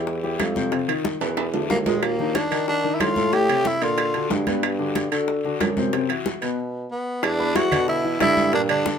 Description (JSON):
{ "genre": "Afro-Cuban jazz", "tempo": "184 BPM", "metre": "4/4", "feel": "straight", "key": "unclear", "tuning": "A4 = 441 Hz", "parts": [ { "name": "warm concert grand piano", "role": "accompaniment", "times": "0.0-9.0 s", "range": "A2 to B5", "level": "-26 LUFS", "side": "left 3 dB", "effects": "none" }, { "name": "dark bassoon", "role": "bass", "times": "0.0-9.0 s", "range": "Eb2 to Eb3", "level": "-26 LUFS", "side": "equal", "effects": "none" }, { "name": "bongos", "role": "percussion", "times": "0.1-9.0 s", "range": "none", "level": "-29 LUFS", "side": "left 4 dB", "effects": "none" }, { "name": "congas", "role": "percussion", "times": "0.1-9.0 s", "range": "none", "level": "-29 LUFS", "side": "right 4 dB", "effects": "none" }, { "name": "guiro", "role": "percussion", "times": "0.1-9.0 s", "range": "none", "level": "-36 LUFS", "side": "left 4 dB", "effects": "none" }, { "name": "claves", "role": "percussion", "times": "0.4-8.9 s", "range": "none", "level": "-33 LUFS", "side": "right 5 dB", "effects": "none" }, { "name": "timbales", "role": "percussion", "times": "0.4-8.9 s", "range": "none", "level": "-28 LUFS", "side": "right 8 dB", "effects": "none" }, { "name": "growling tenor saxophone", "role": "melody", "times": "1.7-4.3, 6.9-9.0 s", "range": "Ab3 to G4", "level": "-22 LUFS", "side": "equal", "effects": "none" } ], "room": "light reverb", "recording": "minimal, uncompressed stereo recording", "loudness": "-20 LUFS", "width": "side -7 dB against mid", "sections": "0.0-7.2 A section; 7.2-9.0 B section", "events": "drum fill 1.2-2.0; stop 6.6-7.2", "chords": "0.0 Am7 (rootless); 0.7 F5; 1.4 E5; 2.0 Eb5; 3.3 Am7; 4.0 Daug; 4.6 Gmaj7; 5.9 Cmaj7#11; 6.6 N.C.; 7.2 Em9", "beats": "0.07 0.40 | 0.72 1.05 1.37 1.70 | 2.02 2.35 2.67 3.00 | 3.33 3.65 3.98 4.30 | 4.63 4.95 5.28 5.60 | 5.93 6.25 6.58 6.91 | 7.23 7.56 7.88 8.21 | 8.53 8.85" }